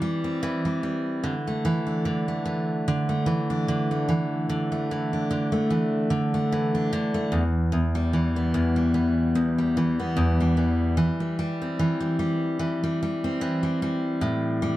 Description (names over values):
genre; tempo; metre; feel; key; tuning
pop; 74 BPM; 4/4; swing 55% on 16ths; unclear; A4 = 438 Hz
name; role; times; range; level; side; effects
picked steel-string acoustic guitar; solo; 0.0-14.8 s; E2 to D4; -22 LUFS; equal; none
room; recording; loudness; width
moderate studio reverb, RT60 0.8 s; none; -22 LUFS; side -15 dB against mid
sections
0.0-14.2 A section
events
none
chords
0.0 C/E; 1.2 Dsus2; 7.3 Em; 11.0 C/E; 14.2 Am7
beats
0.43 | 1.24 2.06 2.87 3.68 | 4.49 5.30 6.12 6.93 | 7.74 8.55 9.36 10.17 | 10.98 11.79 12.60 13.41 | 14.22